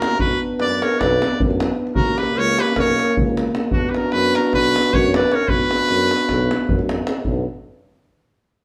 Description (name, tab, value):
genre	balkan folk, Balkan brass band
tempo	306 BPM (eighths)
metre	9/8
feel	straight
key	B harmonic minor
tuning	A4 = 441 Hz
part	bright trumpet	melody	0.0-6.9 s	F#4 to D5	-23 LUFS	equal	none
part	warm clarinet	second line	0.0-6.9 s	D4 to B4	-26 LUFS	equal	none
part	dark euphonium	accompaniment	0.0-7.5 s	A#3 to B3	-26 LUFS	equal	none
part	mellow French horn	accompaniment	0.0-7.5 s	C#4 to D4	-32 LUFS	equal	none
part	davul	percussion	0.0-7.5 s	none	-25 LUFS	equal	none
part	warm tuba	bass	0.2-7.5 s	B1 to F#2	-27 LUFS	equal	none
room	moderate stone room reverb, RT60 1.1 s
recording	band playing live in one room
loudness	-19 LUFS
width	mono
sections	0.0-7.3 A section; 7.3-8.6 B section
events	none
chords	0.2 Bm; 2.0 F#add11/B (rootless); 3.7 Bm